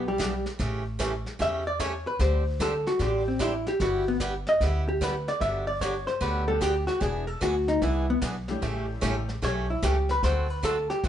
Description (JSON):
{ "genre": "country, western swing", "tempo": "150 BPM", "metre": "4/4", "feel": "swing 66% on 8ths", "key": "G major", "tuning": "A4 = 440 Hz", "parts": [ { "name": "vintage hollow-body jazz guitar", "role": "melody", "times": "0.0-11.1 s", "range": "G3 to E5", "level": "-27 LUFS", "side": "left 1 dB", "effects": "none" }, { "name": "picked swing-style acoustic guitar", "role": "accompaniment", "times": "0.0-11.1 s", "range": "C#3 to A4", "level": "-33 LUFS", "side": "right 2 dB", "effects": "none" }, { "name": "upright bass", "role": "bass", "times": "0.0-11.1 s", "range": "E1 to E2", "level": "-30 LUFS", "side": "equal", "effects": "none" }, { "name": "vintage brush drum kit", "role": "drums", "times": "0.2-11.1 s", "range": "brushed snare drum, hi-hat, kick drum, snare drum", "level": "-35 LUFS", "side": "equal", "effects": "none" }, { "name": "honky-tonk upright piano", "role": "accompaniment", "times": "6.5-9.3 s", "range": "G3 to G4", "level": "-34 LUFS", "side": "left 3 dB", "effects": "none" } ], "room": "moderate studio reverb, RT60 0.7 s", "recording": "band playing live in one room, nothing above 10.5 kHz", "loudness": "-24 LUFS", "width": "side -10 dB against mid", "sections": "0.0-11.1 A section", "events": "hollow-body jazz guitar solo 0.0-11.1", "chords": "0.0 Em7; 0.6 A7; 2.2 D7sus4; 3.8 G6; 5.4 Gmaj7; 7.0 E7; 8.6 A7; 10.2 D7" }